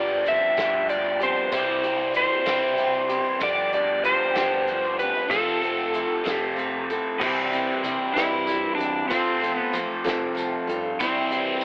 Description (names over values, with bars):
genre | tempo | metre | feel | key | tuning
folk rock and heartland rock | 63 BPM (dotted quarters) | 6/8 | straight | unclear | A4 = 439 Hz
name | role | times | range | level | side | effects
overdriven slide guitar | melody | 0.0-11.6 s | C4 to E5 | -23 LUFS | equal | none
picked steel-string acoustic guitar | accompaniment | 0.0-11.6 s | G2 to A4 | -29 LUFS | equal | none
crunchy overdriven guitar | riff | 0.0-11.6 s | F2 to G4 | -27 LUFS | equal | phaser
picked electric bass | bass | 0.0-11.5 s | F1 to F3 | -42 LUFS | equal | none
natural country drum kit | drums | 0.3-11.5 s | crash cymbal, hi-hat, kick drum, snare drum | -33 LUFS | equal | none
tambourine | percussion | 0.3-11.6 s | none | -44 LUFS | right 1 dB | none
reed electric piano | accompaniment | 7.2-11.6 s | E4 to A5 | -33 LUFS | equal | none
mellow tonewheel organ | sustained chords | 11.0-11.6 s | G4 to C6 | -33 LUFS | equal | none
room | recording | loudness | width
moderate spring reverb, RT60 2.3 s | telephone sound | -21 LUFS | side -29 dB against mid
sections
0.0-7.2 A section; 7.2-11.6 B section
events
reed electric piano fill 10.1-11.0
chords
0.0 G7sus4; 1.5 C; 3.4 G7sus4; 5.3 Fmaj7; 7.2 C; 9.1 F; 11.0 C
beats
0.58 | 1.52 2.47 | 3.42 4.37 | 5.32 6.27 | 7.21 8.16 | 9.11 10.05 | 11.00